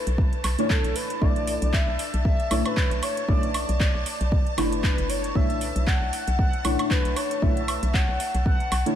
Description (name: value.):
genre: deep house.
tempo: 116 BPM.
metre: 4/4.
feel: swing 56% on 16ths.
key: B minor.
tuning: A4 = 445 Hz.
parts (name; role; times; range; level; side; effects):
mellow horn-like synth lead; melody; 0.0-8.8 s; A4 to F#5; -30 LUFS; equal; chorus, tape echo.
soft string machine; texture; 0.0-9.0 s; A5; -38 LUFS; equal; ensemble chorus, sidechain pumping.
hollow knocking FM bass; bass; 0.1-8.8 s; F#1 to B1; -27 LUFS; equal; tube saturation, sidechain pumping.
house drum kit; drums; 0.1-9.0 s; handclaps, hi-hat, woodblock; -30 LUFS; right 1 dB; none.
electronic kick drum; drums; 0.2-8.6 s; none; -23 LUFS; equal; none.
deep mellow chord stab; stabs; 0.6-9.0 s; A3 to D5; -29 LUFS; left 1 dB; chorus, phaser, sidechain pumping, tape echo.
room: moderate church reverb, RT60 3.6 s.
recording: dreamy mix soaked in reverb.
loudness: -21 LUFS.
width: side -10 dB against mid.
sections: 0.0-9.0 A section.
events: none.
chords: 0.0 Bm11.